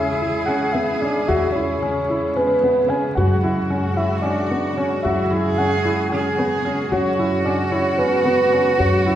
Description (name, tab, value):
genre	contemporary instrumental, chamber music in an uneven meter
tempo	224 BPM (eighths)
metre	7/8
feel	straight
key	unclear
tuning	A4 = 445 Hz
part	soft octave-layered synth lead	melody	0.0-9.2 s	B4 to G#5	-21 LUFS	right 1 dB	chorus
part	rich cello	second line	0.0-9.2 s	F#4 to G#4	-24 LUFS	right 2 dB	none
part	muted studio string section	sustained chords	0.0-9.2 s	C#3 to F#4	-28 LUFS	left 2 dB	none
part	felt-muted upright piano	arpeggios	0.0-9.2 s	B3 to F#4	-23 LUFS	left 2 dB	none
part	upright bass	bass	0.0-9.2 s	E2 to F#2	-25 LUFS	equal	none
room	wet recital hall reverb, RT60 1.7 s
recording	heard from further back in the room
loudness	-17 LUFS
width	side -11 dB against mid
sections	0.0-9.2 A section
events	none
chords	0.0 E6; 3.2 F#sus2